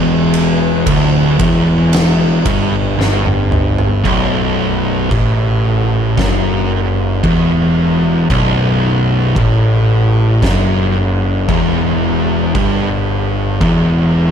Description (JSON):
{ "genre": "stoner and doom metal", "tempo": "56 BPM", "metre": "4/4", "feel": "straight", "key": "B minor", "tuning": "A4 = 444 Hz", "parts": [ { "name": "fuzz guitar", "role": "riff", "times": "0.0-14.3 s", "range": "B1 to A2", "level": "-13 LUFS", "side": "equal", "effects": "distortion" }, { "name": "fuzz picked electric bass", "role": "bass", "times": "0.0-14.3 s", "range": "B0 to A1", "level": "-20 LUFS", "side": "equal", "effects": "overdrive" }, { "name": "oversized low-tuned drum kit", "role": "drums", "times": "0.3-13.9 s", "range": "crash cymbal, kick drum, ride cymbal, snare drum, toms", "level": "-19 LUFS", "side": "right 1 dB", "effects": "none" } ], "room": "light reverb", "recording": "dark, warm production", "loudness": "-11 LUFS", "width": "side -8 dB against mid", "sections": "0.0-4.0 A section; 4.0-14.3 B section", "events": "drum fill 3.0-4.0", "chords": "0.0 Dsus24; 4.0 B5; 12.6 G5" }